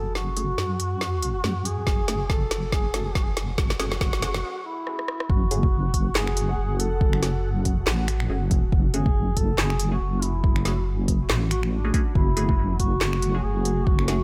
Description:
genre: deep dubstep.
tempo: 140 BPM.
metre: 4/4.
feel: swing 56% on 16ths, half-time.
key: F# minor.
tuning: A4 = 440 Hz.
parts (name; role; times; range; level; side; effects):
mellow duduk; melody; 0.0-14.2 s; D4 to A4; -34 LUFS; equal; dub echo.
dark analog pad; sustained chords; 0.0-14.2 s; A3 to F#5; -38 LUFS; equal; chorus.
deep soft wobble bass; bass; 0.0-14.2 s; F#1 to F#2; -28 LUFS; equal; chorus.
deep house drum kit; drums; 0.2-14.2 s; finger snaps, handclaps, hi-hat, rim click, snare drum; -31 LUFS; equal; high-pass filter on hats, high-pass filter on snare.
filtered dub chord stab; stabs; 0.4-14.2 s; A3 to G#4; -37 LUFS; equal; phaser, lush chorus, dub echo.
electronic kick drum; drums; 1.9-14.0 s; none; -25 LUFS; equal; none.
room: light reverb.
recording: none.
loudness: -24 LUFS.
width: mono.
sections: 0.0-5.3 A section; 5.3-14.2 B section.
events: build-up 0.0-5.3; drum fill 0.0-4.4, 4.9-5.3; filter sweep on synth stab 0.0-5.3; break 4.4-5.3; drop 5.3-14.2.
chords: 0.0 F#madd9.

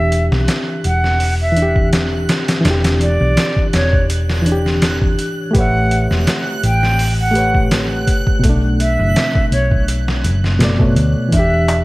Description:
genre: trip hop.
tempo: 83 BPM.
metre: 4/4.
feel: swing 54% on 16ths.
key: E dorian.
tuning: A4 = 442 Hz.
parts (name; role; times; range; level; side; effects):
bright concert flute; melody; 0.0-11.8 s; C#5 to G5; -21 LUFS; right 1 dB; dub echo.
overdriven reed electric piano; accompaniment; 0.0-11.8 s; B2 to F#5; -19 LUFS; equal; harmonic tremolo.
hollow-body short-scale fingered electric bass; bass; 0.0-11.8 s; E1 to D2; -17 LUFS; equal; none.
backwards swelling texture; texture; 0.4-11.8 s; F#6; -30 LUFS; right 4 dB; built-in reverb.
trip hop sampler-style drum kit; drums; 0.1-11.8 s; hi-hat, kick drum, snare drum; -18 LUFS; equal; none.
darbuka; percussion; 11.3-11.8 s; none; -23 LUFS; left 2 dB; none.
room: light reverb, digital ambience.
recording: vinyl crackle.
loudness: -13 LUFS.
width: side -20 dB against mid.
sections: 0.0-11.8 A section.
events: none.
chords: 0.0 Em7; 5.5 A13; 8.4 Bm7; 11.3 Em7.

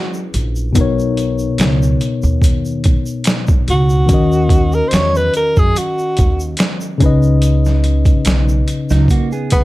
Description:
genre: R&B, neo-soul.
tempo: 72 BPM.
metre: 4/4.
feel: swing 54% on 16ths.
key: B major.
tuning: A4 = 440 Hz.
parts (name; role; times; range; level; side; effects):
breathy tenor saxophone; melody; 0.0-9.6 s; B3 to C#5; -17 LUFS; equal; none.
tine electric piano; accompaniment; 0.0-9.6 s; B2 to D#5; -18 LUFS; left 4 dB; none.
egg shaker and finger snaps; percussion; 0.1-9.6 s; none; -32 LUFS; right 3 dB; none.
upright bass; bass; 0.3-9.6 s; A#1 to F#2; -16 LUFS; right 1 dB; none.
boom bap sampler-style drum kit; drums; 0.3-9.6 s; hi-hat, kick drum, snare drum; -15 LUFS; equal; overdrive.
mellow electric guitar; second line; 8.9-9.6 s; F#3 to G#4; -20 LUFS; right 7 dB; none.
room: little or no reverb.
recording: dark, warm production.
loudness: -12 LUFS.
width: side -17 dB against mid.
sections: 0.0-9.6 A section.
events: none.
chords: 0.0 F#9sus4; 0.8 Bmaj9; 4.1 D#m7; 7.0 C#sus2.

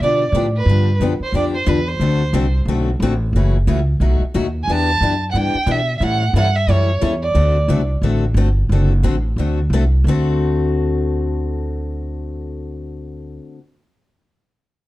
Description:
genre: acoustic string swing (jazz manouche).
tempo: 179 BPM.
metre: 4/4.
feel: swing 61% on 8ths.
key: D mixolydian.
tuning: A4 = 441 Hz.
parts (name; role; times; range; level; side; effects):
warm violin; melody; 0.0-2.5, 4.6-7.9 s; B4 to A5; -20 LUFS; right 3 dB; none.
picked steel-string acoustic guitar; accompaniment; 0.0-13.6 s; B2 to A4; -22 LUFS; left 4 dB; none.
upright bass; bass; 0.0-13.4 s; F#1 to B2; -17 LUFS; equal; none.
room: light reverb.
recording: dark, warm production.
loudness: -15 LUFS.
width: side -17 dB against mid.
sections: 0.0-10.0 A section; 10.0-12.7 B section.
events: none.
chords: 0.0 G7; 2.0 D7; 3.3 F#m7; 4.0 B7; 4.7 Em7; 6.0 A7; 7.4 D7.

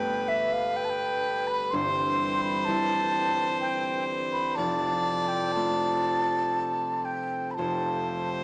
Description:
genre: celtic folk, Celtic slow air.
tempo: 59-64 BPM.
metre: 3/4.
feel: rubato.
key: unclear.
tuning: A4 = 439 Hz.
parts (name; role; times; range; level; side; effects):
wooden flute; melody; 0.0-8.3 s; E5 to C6; -27 LUFS; equal; none.
clear fiddle; second line; 0.0-8.4 s; B4 to D5; -30 LUFS; equal; none.
concert harp; accompaniment; 0.0-8.4 s; F1 to G4; -33 LUFS; equal; none.
pedal harmonium; sustained chords; 0.0-8.4 s; G2 to A4; -34 LUFS; equal; none.
room: moderate recital hall reverb, RT60 1.6 s.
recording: small speaker sound.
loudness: -24 LUFS.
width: side -29 dB against mid.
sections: 0.0-8.4 A section.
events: none.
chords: 0.0 Gadd9; 1.7 C/G; 4.6 F; 7.6 Fadd9.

